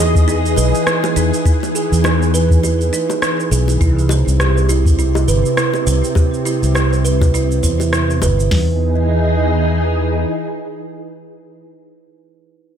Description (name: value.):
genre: sunset chillout.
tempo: 102 BPM.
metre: 4/4.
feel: swing 58% on 16ths.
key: E major.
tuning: A4 = 442 Hz.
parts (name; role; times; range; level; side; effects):
soft string machine; sustained chords; 0.0-11.6 s; C3 to D#5; -20 LUFS; left 1 dB; phaser, ensemble chorus.
kalimba; arpeggios; 0.0-8.8 s; D#4 to C5; -21 LUFS; right 7 dB; low-pass filter, digital delay.
fretless electric bass; bass; 0.0-10.2 s; G1 to E2; -16 LUFS; equal; ensemble chorus.
electronic shaker and rim click; drums; 0.2-8.5 s; none; -22 LUFS; equal; none.
soft vintage rhythm box; drums; 0.2-8.7 s; hi-hat, kick drum, snare drum; -14 LUFS; left 1 dB; overdrive.
bongos; percussion; 0.6-8.4 s; none; -26 LUFS; left 6 dB; none.
room: light reverb.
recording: none.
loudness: -13 LUFS.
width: side -8 dB against mid.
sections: 0.0-8.5 A section; 8.5-10.9 B section.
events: none.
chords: 0.0 Emaj7; 3.8 Cmaj7; 8.5 Emaj7.